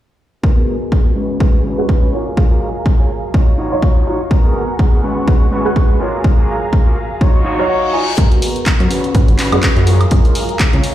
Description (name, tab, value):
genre	filtered disco house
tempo	124 BPM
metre	4/4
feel	swing 57% on 16ths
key	G# dorian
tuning	A4 = 439 Hz
part	warm grand piano	accompaniment	0.4-10.9 s	F#3 to E#5	-21 LUFS	right 1 dB	phaser, sidechain pumping, low-pass filter
part	rich studio violin section	sustained chords	0.4-10.9 s	G#3 to C#6	-26 LUFS	right 1 dB	sidechain pumping, low-pass filter
part	electronic kick drum	drums	0.4-10.7 s	none	-13 LUFS	equal	none
part	mellow electric guitar	riff	0.6-10.9 s	G#3 to G#5	-22 LUFS	left 1 dB	vintage 12-bit sampler grit, sidechain pumping, low-pass filter
part	reverse cymbal	sound effects	7.5-8.2 s	none	-24 LUFS	left 4 dB	none
part	plucky analog bass	bass	8.2-10.8 s	G#1 to G#2	-14 LUFS	equal	sidechain pumping, low-pass filter
part	punchy analog drum machine	drums	8.2-10.9 s	handclaps, hi-hat, woodblock	-20 LUFS	equal	sidechain pumping on hats, sidechain pumping on perc
room	digital ambience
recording	played on a big sound system in a bare room, large studio reverb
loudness	-12 LUFS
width	side -13 dB against mid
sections	0.4-8.2 A section; 8.2-10.9 B section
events	filter sweep 0.4-8.2, 8.2-10.9; clean electric guitar fill 7.2-8.2; reverse cymbal 7.5-8.2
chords	0.4 G#m9; 1.2 C#7sus4/G#; 2.1 F#maj9; 3.3 D#m9; 4.3 G#m9; 5.0 C#7sus4/G#; 6.0 F#maj9; 7.2 D#m9; 8.2 G#m9; 8.9 C#7sus4/G#; 9.9 F#maj9